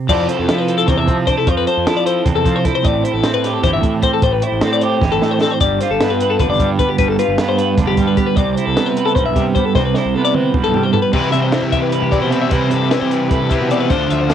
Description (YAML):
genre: math rock and midwest emo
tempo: 304 BPM (eighths)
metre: 7/8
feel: straight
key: C major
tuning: A4 = 440 Hz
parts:
  - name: twelve-string electric guitar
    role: accompaniment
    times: 0.0-14.3 s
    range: G2 to C5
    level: -18 LUFS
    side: right 7 dB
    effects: harmonic tremolo, cassette tape
  - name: twelve-string electric guitar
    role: arpeggios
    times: 0.1-14.3 s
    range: G4 to E5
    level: -18 LUFS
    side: left 9 dB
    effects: cassette tape
  - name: fuzz fingered electric bass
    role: bass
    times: 0.1-14.3 s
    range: F1 to F3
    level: -22 LUFS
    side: equal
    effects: overdrive
  - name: compact cocktail drum kit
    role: drums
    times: 0.1-14.3 s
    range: crash cymbal, hi-hat, kick drum, snare drum, toms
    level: -20 LUFS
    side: equal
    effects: cassette tape
  - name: crunchy overdriven guitar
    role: riff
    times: 11.1-14.3 s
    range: C3 to F4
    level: -20 LUFS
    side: left 6 dB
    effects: cassette tape
room: little or no reverb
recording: home recording on cassette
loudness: -13 LUFS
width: side -9 dB against mid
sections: 0.1-11.1 A section; 11.1-14.3 B section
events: drum fill 5.0-5.6, 9.8-11.1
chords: 0.1 Fmaj7; 2.8 Am7; 5.6 G7; 8.4 Cmaj7